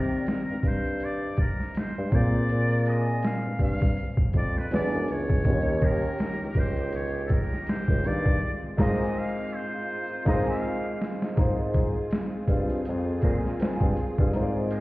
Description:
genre	R&B, neo-soul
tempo	81 BPM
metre	4/4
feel	swing 56% on 16ths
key	unclear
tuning	A4 = 441 Hz
part	trumpet with metal mute	melody	0.0-11.0 s	A4 to F5	-34 LUFS	equal	none
part	electric guitar through a small old amp	second line	0.0-14.8 s	Eb3 to Ab4	-37 LUFS	right 2 dB	wah, spring reverb
part	warm grand piano	accompaniment	0.0-14.8 s	Bb2 to F5	-30 LUFS	equal	none
part	mellow bassoon	bass	0.0-14.8 s	Db2 to C3	-29 LUFS	equal	none
part	boom bap sampler-style drum kit	drums	0.3-14.8 s	crash cymbal, hi-hat, kick drum, snare drum	-26 LUFS	equal	overdrive
part	warm studio string section	sustained chords	5.4-14.8 s	Db3 to Ab4	-36 LUFS	left 1 dB	none
room	moderate small room reverb, RT60 0.5 s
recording	heard muffled through a wall, stone room reverb, EQ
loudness	-24 LUFS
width	side -19 dB against mid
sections	0.0-11.4 A section; 11.4-14.8 B section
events	band accent 8.4-11.4; drum fill 9.9-11.4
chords	0.0 Cm9; 2.1 Bb7; 4.7 E9; 5.5 Eb7; 8.4 Ab69

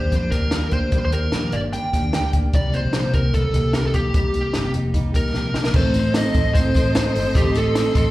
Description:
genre	jangly indie pop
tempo	149 BPM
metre	4/4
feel	straight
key	unclear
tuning	A4 = 440 Hz
part	fuzz lead guitar	melody	0.0-8.1 s	G4 to G5	-24 LUFS	equal	distortion, slapback echo, tape echo
part	fingerpicked steel-string acoustic guitar	accompaniment	0.0-8.1 s	C3 to A4	-28 LUFS	right 4 dB	slapback echo
part	clean electric guitar	arpeggios	0.0-8.1 s	C3 to A4	-26 LUFS	left 2 dB	none
part	vintage muted fingered electric bass	bass	0.0-8.1 s	F1 to A2	-23 LUFS	equal	none
part	compact cocktail drum kit	drums	0.1-8.0 s	crash cymbal, hi-hat, kick drum, snare drum	-21 LUFS	equal	none
part	warm studio string section	sustained chords	5.7-8.1 s	A4 to C6	-31 LUFS	left 1 dB	none
part	tambourine	percussion	5.9-8.0 s	none	-41 LUFS	left 1 dB	none
room	light reverb, studio reverb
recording	live gig heard through the venue's PA, club reverb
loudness	-17 LUFS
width	side -16 dB against mid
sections	0.0-5.7 A section; 5.7-8.1 B section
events	drum fill 5.3-5.7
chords	0.0 Ebmaj7; 2.5 Cm7; 5.7 Adim

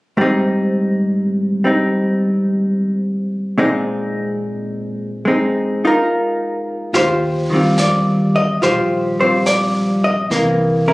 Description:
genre	jazz ballad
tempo	71 BPM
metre	4/4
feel	swing 68% on 8ths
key	Eb major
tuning	A4 = 440 Hz
part	hollow-body jazz guitar	accompaniment	0.2-10.9 s	Ab2 to Eb5	-15 LUFS	equal	none
part	upright bass	bass	6.9-10.9 s	Bb1 to Fb2	-25 LUFS	equal	none
part	jazz brush drum kit	drums	6.9-10.9 s	brushed snare drum, hi-hat, snare drum	-27 LUFS	equal	none
room	little or no reverb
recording	recorded on a phone in the room, club reverb, compression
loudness	-15 LUFS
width	side -21 dB against mid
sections	0.2-6.9 A section; 6.9-10.9 B section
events	none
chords	0.2 Abmaj7; 3.6 Bb9sus4; 6.9 Eb69; 10.3 C7

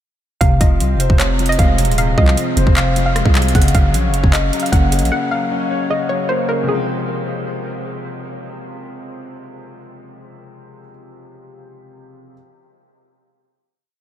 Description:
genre	hip hop, trap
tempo	153 BPM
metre	4/4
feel	half-time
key	F phrygian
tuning	A4 = 440 Hz
part	soft round pluck	melody	0.4-7.8 s	Ab4 to Gb5	-22 LUFS	equal	chorus, diffuse ambient delay
part	dark concert grand piano	accompaniment	0.4-12.3 s	C3 to Db5	-23 LUFS	left 2 dB	lush chorus
part	growling 808-style bass	bass	0.4-5.1 s	Eb1 to C2	-16 LUFS	equal	none
part	trap drum kit	drums	0.4-5.1 s	handclaps, hi-hat, kick drum, rim click	-17 LUFS	equal	none
room	light reverb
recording	none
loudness	-14 LUFS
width	side -11 dB against mid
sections	0.4-6.7 hook; 6.7-9.8 final chord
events	none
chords	0.4 Fm; 3.5 Gb; 6.7 Fm

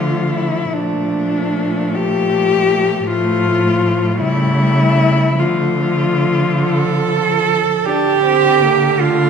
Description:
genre	classical, lyrical piece for cello ensemble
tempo	48-55 BPM (dotted quarters)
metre	6/8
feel	rubato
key	D minor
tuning	A4 = 441 Hz
part	warm cello	melody	0.0-9.3 s	D4 to A4	-18 LUFS	left 5 dB	none
part	clear cello	second line	0.0-9.3 s	A3 to A4	-18 LUFS	right 7 dB	none
part	rich cello	accompaniment	0.0-9.3 s	F3 to D4	-21 LUFS	left 1 dB	none
part	rich cello	bass	0.0-9.3 s	A2 to D3	-19 LUFS	right 1 dB	none
room	wet recital hall reverb, RT60 1.7 s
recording	minimal, uncompressed stereo recording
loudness	-13 LUFS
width	side -6 dB against mid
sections	0.0-7.8 A section; 7.8-9.3 A section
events	none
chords	0.0 Dm; 0.7 Bbmaj7; 3.1 F/A; 4.2 A7/C#; 5.4 Dm; 7.8 D5

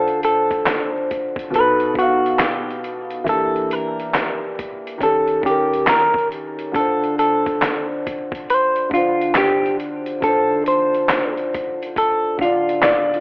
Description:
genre	lo-fi hip hop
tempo	69 BPM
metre	4/4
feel	swing 63% on 16ths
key	D minor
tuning	A4 = 441 Hz
part	semi-hollow electric guitar	melody	0.0-13.2 s	F4 to C5	-18 LUFS	equal	low-pass filter
part	felt-muted upright piano	accompaniment	0.0-13.2 s	B2 to F5	-22 LUFS	equal	cassette tape, low-pass filter
part	trip hop sampler-style drum kit	drums	0.1-13.2 s	handclaps, hi-hat, kick drum, snare drum	-22 LUFS	equal	none
room	moderate spring reverb, RT60 1.9 s, digital ambience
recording	vinyl crackle, telephone sound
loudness	-16 LUFS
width	side -29 dB against mid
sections	0.0-13.2 A section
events	none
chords	0.0 Dm7; 1.5 B7; 3.3 Em7b5; 5.0 Eb7#11; 6.7 Dm7

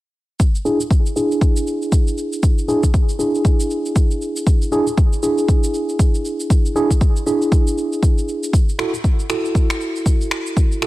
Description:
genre	afro house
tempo	118 BPM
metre	4/4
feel	swing 59% on 16ths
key	unclear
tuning	A4 = 440 Hz
part	electronic kick drum	drums	0.4-10.7 s	none	-15 LUFS	equal	overdrive
part	electronic shaker and finger snaps	drums	0.4-10.9 s	none	-28 LUFS	equal	overdrive
part	tine electric piano	stabs	0.7-10.9 s	D4 to A4	-20 LUFS	right 1 dB	medium stereo tremolo, vintage 12-bit sampler grit, sidechain pumping, low-pass filter, digital delay
room	digital ambience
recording	none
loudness	-15 LUFS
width	side -17 dB against mid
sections	0.4-10.9 A section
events	filter sweep on tine electric piano 0.4-10.9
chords	0.4 E7; 8.5 F#m7

